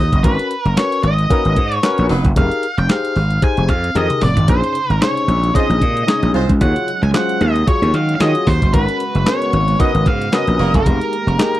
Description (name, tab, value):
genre	early-eighties boogie funk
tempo	113 BPM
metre	4/4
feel	swing 56% on 16ths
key	unclear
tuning	A4 = 440 Hz
part	octave-fuzz lead guitar	melody	0.0-11.6 s	Bb4 to Ab5	-20 LUFS	equal	distortion
part	gritty slap bass	bass	0.0-11.4 s	F1 to Eb3	-16 LUFS	equal	overdrive
part	crisp 8-bit digital drum machine	drums	0.1-11.6 s	handclaps, hi-hat, kick drum, snare drum, toms	-17 LUFS	equal	none
part	barky tine electric piano	accompaniment	0.2-11.6 s	Db4 to Eb5	-21 LUFS	left 4 dB	none
part	dark horn section	second line	1.3-2.3, 5.5-6.5, 9.8-10.9 s	Gb3 to C5	-21 LUFS	right 4 dB	none
part	warm analog pad	sustained chords	4.5-11.6 s	C3 to G4	-26 LUFS	right 2 dB	chorus
room	little or no reverb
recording	dry, close 1970s-style studio recording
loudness	-13 LUFS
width	side -14 dB against mid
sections	0.0-11.6 A section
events	drum fill 4.0-4.5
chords	0.2 Abm11; 2.4 Fm11; 4.5 Bbm11; 6.6 Ebm11; 8.7 Abm11; 10.9 Fm11